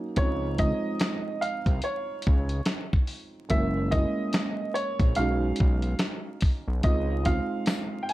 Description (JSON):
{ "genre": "lo-fi hip hop", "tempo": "72 BPM", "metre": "4/4", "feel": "swing 60% on 16ths", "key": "Db major", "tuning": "A4 = 441 Hz", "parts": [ { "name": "felt-muted upright piano", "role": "accompaniment", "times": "0.0-8.1 s", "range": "F3 to Gb4", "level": "-32 LUFS", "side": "right 2 dB", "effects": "cassette tape, low-pass filter" }, { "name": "bright upright piano", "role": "melody", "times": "0.2-8.1 s", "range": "Db5 to Ab5", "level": "-31 LUFS", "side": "right 2 dB", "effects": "low-pass filter, plate reverb" }, { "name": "fat analog bass", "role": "bass", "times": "0.2-7.4 s", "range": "Gb1 to Db2", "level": "-28 LUFS", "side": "equal", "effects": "none" }, { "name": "dusty soul sampler-style drum kit", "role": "drums", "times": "0.2-8.1 s", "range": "finger snaps, hi-hat, kick drum, snare drum", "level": "-25 LUFS", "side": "equal", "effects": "vintage 12-bit sampler grit" }, { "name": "tambourine", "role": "percussion", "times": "7.7-7.9 s", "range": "none", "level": "-44 LUFS", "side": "left 6 dB", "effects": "none" } ], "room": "light reverb", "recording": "vinyl crackle", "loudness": "-24 LUFS", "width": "side -16 dB against mid", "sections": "0.2-8.1 A section", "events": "break 0.0", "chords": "0.2 Dbmaj9; 3.5 Gb7; 5.2 Cb69; 6.8 Dbmaj9" }